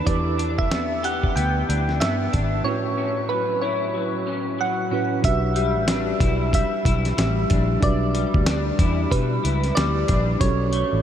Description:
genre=indie pop, bedroom pop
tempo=93 BPM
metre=4/4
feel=swing 60% on 16ths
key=unclear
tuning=A4 = 440 Hz
part: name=soft electric-piano-like synth keys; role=melody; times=0.0-11.0 s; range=B4 to G5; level=-26 LUFS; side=right 2 dB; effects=analog chorus, ping-pong delay
part: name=electric guitar through a small old amp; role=accompaniment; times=0.0-11.0 s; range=A2 to G4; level=-27 LUFS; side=left 4 dB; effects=analog chorus, vibrato effect
part: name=tine electric piano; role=accompaniment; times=0.0-11.0 s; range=A2 to C#5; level=-30 LUFS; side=right 3 dB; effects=medium stereo tremolo, cassette tape
part: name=vintage muted fingered electric bass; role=bass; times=0.1-11.0 s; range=G#1 to B2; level=-23 LUFS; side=equal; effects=none
part: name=dusty soul sampler-style drum kit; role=drums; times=0.1-10.9 s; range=hi-hat, kick drum, snare drum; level=-25 LUFS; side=equal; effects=none
room=moderate huge ambient reverb, RT60 8.1 s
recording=dreamy mix soaked in reverb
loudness=-19 LUFS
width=side -10 dB against mid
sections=0.0-5.2 A section; 5.2-11.0 B section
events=none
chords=0.1 Em7; 2.7 A6; 5.2 Em7; 10.4 F#m

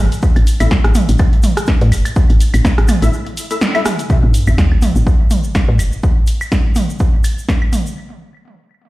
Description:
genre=minimal techno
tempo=124 BPM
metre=4/4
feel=swing 56% on 16ths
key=unclear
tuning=A4 = 440 Hz
part: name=woody FM bass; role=bass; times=0.0-5.9 s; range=G1 to A2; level=-13 LUFS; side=equal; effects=sidechain pumping
part: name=house drum kit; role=drums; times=0.1-7.8 s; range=hi-hat, snare drum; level=-22 LUFS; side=equal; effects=small room ambience
part: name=tube shaker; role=percussion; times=0.1-7.9 s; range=none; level=-32 LUFS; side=right 2 dB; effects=none
part: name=electronic kick drum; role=drums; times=0.2-7.6 s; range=none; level=-13 LUFS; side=equal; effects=small room ambience
part: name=minimal click drum kit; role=percussion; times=0.4-7.8 s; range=claves, rim click, toms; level=-21 LUFS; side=right 2 dB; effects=small room ambience, tape echo
part: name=percussive organ stab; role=stabs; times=0.6-3.8 s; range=A3 to E5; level=-23 LUFS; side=left 3 dB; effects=ensemble chorus, tape echo
part: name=sub drop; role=sound effects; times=4.1-6.0 s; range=none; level=-19 LUFS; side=equal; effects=none
room=light reverb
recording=played on a big sound system in a bare room, stone room reverb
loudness=-12 LUFS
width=side -19 dB against mid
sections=0.0-4.1 A section; 4.1-8.0 B section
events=drop 0.0-4.1; break 3.1-4.1; band accent 3.6; impact 4.1-6.0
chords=0.0 A5; 4.1 N.C.

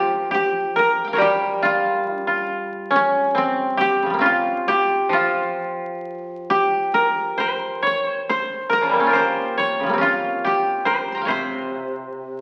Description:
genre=japanese traditional, Japanese chamber music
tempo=69 BPM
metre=2/4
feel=rubato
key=C in sen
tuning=A4 = 441 Hz
part: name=koto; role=melody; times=0.0-12.4 s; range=Db3 to C6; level=-26 LUFS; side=equal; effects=none
part: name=koto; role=second line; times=0.0-12.4 s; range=Db3 to Db5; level=-22 LUFS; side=equal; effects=none
part: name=koto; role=accompaniment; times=0.0-7.8, 11.3-12.4 s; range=C3 to G4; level=-30 LUFS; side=equal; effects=none
room=wet recital hall reverb, RT60 1.5 s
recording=very old 78 rpm record, vinyl crackle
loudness=-20 LUFS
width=mono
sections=0.0-12.4 A section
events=none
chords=none

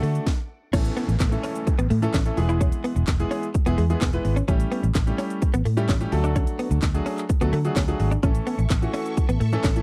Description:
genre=dance-pop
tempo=128 BPM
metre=4/4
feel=straight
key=A major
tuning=A4 = 442 Hz
part: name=warm grand piano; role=accompaniment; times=0.0-9.8 s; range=E3 to B4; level=-30 LUFS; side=equal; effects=sidechain pumping
part: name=phased string machine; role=sustained chords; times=0.0-0.2, 8.2-9.8 s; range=A4 to D6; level=-40 LUFS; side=equal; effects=ensemble chorus, phaser, sidechain pumping
part: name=direct-recorded clean electric guitar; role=riff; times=0.0-9.7 s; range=G#3 to E4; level=-31 LUFS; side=equal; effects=ensemble chorus
part: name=vintage muted fingered electric bass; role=bass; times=0.0-9.8 s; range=E1 to D3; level=-25 LUFS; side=equal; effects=sidechain pumping
part: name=house drum kit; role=drums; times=0.0-9.8 s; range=crash cymbal, handclaps, hi-hat, kick drum, shaker, snare drum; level=-26 LUFS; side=equal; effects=none
part: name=downlifter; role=sound effects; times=0.8-4.5 s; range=none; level=-42 LUFS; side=equal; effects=none
part: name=group handclap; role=percussion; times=1.2-9.7 s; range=none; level=-46 LUFS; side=equal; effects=none
room=little or no reverb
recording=dry, close 1970s-style studio recording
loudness=-23 LUFS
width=mono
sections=0.7-9.8 A section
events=drum fill 0.0; stop 0.3-0.7; drop 0.7-9.8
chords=0.0 D; 0.7 A; 2.4 E; 4.5 A7; 6.1 D; 8.2 A

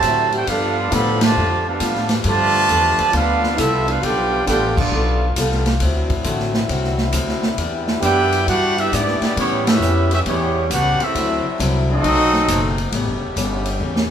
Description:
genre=jazz, big band swing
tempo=135 BPM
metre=4/4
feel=swing 66% on 8ths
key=unclear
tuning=A4 = 439 Hz
part: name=brilliant trumpet section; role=melody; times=0.0-5.3, 8.0-12.7 s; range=B3 to B5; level=-19 LUFS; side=right 2 dB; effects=none
part: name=clear trombone section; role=second line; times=0.0-5.3, 8.0-12.7 s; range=C3 to G4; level=-22 LUFS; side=right 2 dB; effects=none
part: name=picked old ladder-braced acoustic guitar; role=accompaniment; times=0.0-14.1 s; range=A2 to A4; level=-26 LUFS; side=left 2 dB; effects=none
part: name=clear trombone section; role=sustained chords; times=0.0-14.1 s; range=B2 to G4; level=-27 LUFS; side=left 1 dB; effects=none
part: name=upright bass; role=bass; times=0.0-14.1 s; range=E1 to A2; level=-22 LUFS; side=left 1 dB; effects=none
part: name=swinging big-band drum kit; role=drums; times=0.0-14.1 s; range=crash cymbal, hi-hat, kick drum, ride cymbal, snare drum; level=-24 LUFS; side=equal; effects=none
room=wet large studio reverb, RT60 1.1 s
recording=band playing live in one room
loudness=-16 LUFS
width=side -9 dB against mid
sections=0.0-14.1 A section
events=band accent 1.1, 4.7, 9.6; drum fill 13.8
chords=0.5 G9; 5.8 D9; 7.6 Em7; 9.4 A9; 11.1 D9; 12.0 B7b9; 12.9 A9

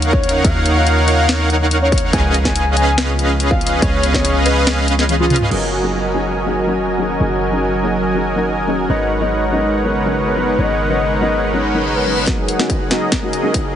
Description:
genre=future bass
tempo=142 BPM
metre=4/4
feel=half-time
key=F# major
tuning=A4 = 440 Hz
part: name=ethereal airy pad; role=sustained chords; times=0.0-13.8 s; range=C#3 to F#4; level=-27 LUFS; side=equal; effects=ensemble chorus, built-in reverb, sidechain pumping
part: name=soft supersaw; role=riff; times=0.0-13.8 s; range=F#3 to G#5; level=-18 LUFS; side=right 1 dB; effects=sidechain pumping, low-pass filter
part: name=warm 808-style bass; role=bass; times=0.0-12.3 s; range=F#1 to D#2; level=-20 LUFS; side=equal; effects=tube saturation, sidechain pumping
part: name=trap drum kit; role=drums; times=0.0-5.6, 12.3-13.6 s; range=crash cymbal, hi-hat, snare drum, toms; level=-21 LUFS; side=left 1 dB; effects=none
part: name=soft octave-layered synth lead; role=melody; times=0.1-5.4, 8.9-12.2 s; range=E#4 to G#5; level=-23 LUFS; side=left 1 dB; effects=chorus, sidechain pumping, ping-pong delay
part: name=electronic kick drum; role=drums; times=0.1-4.2, 12.3-13.6 s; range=none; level=-19 LUFS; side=equal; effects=distortion
part: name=soft round pluck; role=accompaniment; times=5.5-13.5 s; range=F#3 to B4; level=-24 LUFS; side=left 2 dB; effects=ensemble chorus, sidechain pumping, ping-pong delay
part: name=reverse cymbal and riser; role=sound effects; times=11.6-13.8 s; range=none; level=-27 LUFS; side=left 5 dB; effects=none
room=light reverb, digital ambience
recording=heavily compressed radio sound, nothing above 10.5 kHz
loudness=-14 LUFS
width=side -10 dB against mid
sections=0.0-5.5 A section; 5.5-12.3 B section; 12.3-13.8 C section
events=drop 0.0-5.5; kick drops out 4.7-5.5; drum fill 5.1-5.5, 12.3-13.8; filter sweep on supersaw synth 5.5-12.3, 12.3-13.8; reverse cymbal 11.6-12.3; build-up 12.3-13.8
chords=0.0 D#m9; 2.1 C#7; 5.5 F#6; 8.9 G#m11; 12.3 F#6

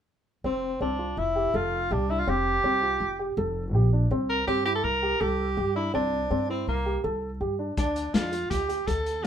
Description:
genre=progressive instrumental, band music in an uneven meter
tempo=164 BPM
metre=5/4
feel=straight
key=F major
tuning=A4 = 442 Hz
part: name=dark baby grand piano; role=arpeggios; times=0.4-9.3 s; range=C4 to A4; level=-30 LUFS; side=equal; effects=none
part: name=upright bass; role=bass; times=0.4-9.3 s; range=F1 to G2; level=-29 LUFS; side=equal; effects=none
part: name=warm tenor saxophone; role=melody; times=0.5-9.3 s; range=Bb3 to Bb4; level=-27 LUFS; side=right 1 dB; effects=none
part: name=vintage drum kit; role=drums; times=7.8-9.3 s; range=hi-hat, kick drum, snare drum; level=-28 LUFS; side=left 2 dB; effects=none
room=light reverb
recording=minimal, uncompressed stereo recording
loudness=-24 LUFS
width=side -9 dB against mid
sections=0.4-9.3 A section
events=none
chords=0.4 Fadd9; 4.1 C7; 7.8 Bbmaj7/D (rootless)

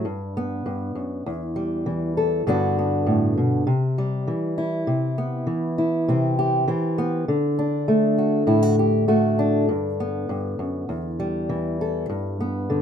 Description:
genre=folk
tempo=100 BPM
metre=4/4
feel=straight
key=G major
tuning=A4 = 437 Hz
part: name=fingerpicked old ladder-braced acoustic guitar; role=solo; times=0.0-12.8 s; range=E2 to A4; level=-20 LUFS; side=equal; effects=none
room=wet small room reverb, RT60 0.5 s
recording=rough home demo mix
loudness=-20 LUFS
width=side -8 dB against mid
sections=0.0-12.8 A section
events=none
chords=0.0 Gmaj7; 1.2 Em; 2.5 Gmaj7; 3.7 C; 4.9 Cmaj7; 7.3 D; 9.7 Gmaj7; 10.9 Em; 12.1 G

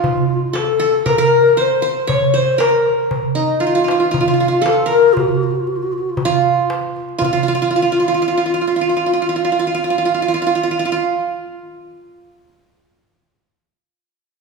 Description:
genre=Arabic maqam ensemble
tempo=118 BPM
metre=4/4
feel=straight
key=F maqam hijaz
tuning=A4 = 441 Hz
part: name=breathy mellow low ney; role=melody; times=0.0-10.1 s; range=Eb4 to Db5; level=-18 LUFS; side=left 6 dB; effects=none
part: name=qanun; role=second line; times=0.0-12.3 s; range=Eb4 to Db5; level=-17 LUFS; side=right 4 dB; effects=none
part: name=darbuka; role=percussion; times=0.0-7.4 s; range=none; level=-22 LUFS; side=right 2 dB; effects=none
room=moderate concert hall reverb, RT60 2.0 s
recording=recorded in a church or concert hall, studio ambience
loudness=-14 LUFS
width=side -3 dB against mid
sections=0.0-7.2 A section; 7.2-11.3 B section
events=none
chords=none

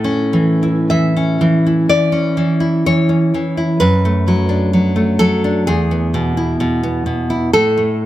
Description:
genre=romantic piece for solo classical guitar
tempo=64 BPM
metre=4/4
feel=rubato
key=A major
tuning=A4 = 439 Hz
part: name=nylon-string guitar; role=solo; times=0.0-8.1 s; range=E2 to E5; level=-13 LUFS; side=equal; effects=none
room=light reverb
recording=close, detailed microphones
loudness=-13 LUFS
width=side -14 dB against mid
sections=0.0-8.1 A section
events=none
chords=0.0 A; 3.8 D/F#; 5.7 E; 7.5 N.C.

